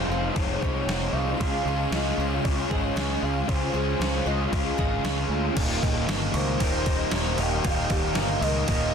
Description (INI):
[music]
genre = rock, shoegaze and dream pop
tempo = 116 BPM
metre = 4/4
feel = straight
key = Eb mixolydian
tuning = A4 = 440 Hz
[part]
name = warm velvety synth lead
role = melody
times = 0.0-8.9 s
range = C5 to G5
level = -33 LUFS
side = left 2 dB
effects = chorus, analog delay
[part]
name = icy glass pad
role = sustained chords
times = 0.1-8.9 s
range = Db4 to Eb6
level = -38 LUFS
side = left 1 dB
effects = chorus, built-in reverb
[part]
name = picked twelve-string acoustic guitar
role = arpeggios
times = 0.0-8.9 s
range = F4 to Eb5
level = -36 LUFS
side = right 2 dB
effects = ensemble chorus, analog delay
[part]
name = electric guitar through a small old amp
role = riff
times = 0.0-8.9 s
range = Eb2 to Ab4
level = -32 LUFS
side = right 13 dB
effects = reverse reverb
[part]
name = overdriven electric guitar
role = riff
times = 0.0-8.9 s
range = Eb2 to Ab4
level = -30 LUFS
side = left 11 dB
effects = lush chorus
[part]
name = raw garage guitar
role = riff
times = 0.0-5.6 s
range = F2 to Ab4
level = -33 LUFS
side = right 1 dB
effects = overdrive
[part]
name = growling picked electric bass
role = bass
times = 0.0-8.9 s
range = Eb1 to D2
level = -29 LUFS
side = equal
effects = overdrive
[part]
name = gated 80s digital drum machine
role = drums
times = 0.4-8.8 s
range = crash cymbal, kick drum, snare drum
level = -29 LUFS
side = equal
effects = gated reverb, gated reverb snare, overdrive
[sound]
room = little or no reverb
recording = dense, heavily limited modern master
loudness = -23 LUFS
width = side -6 dB against mid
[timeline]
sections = 0.0-5.6 A section; 5.6-8.9 B section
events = none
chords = 0.0 Fm7; 1.4 Dbmaj7; 5.6 Eb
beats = 0.37 0.89 | 1.41 1.93 2.45 2.97 | 3.49 4.01 4.53 5.05 | 5.57 6.08 6.60 7.12 | 7.64 8.16 8.68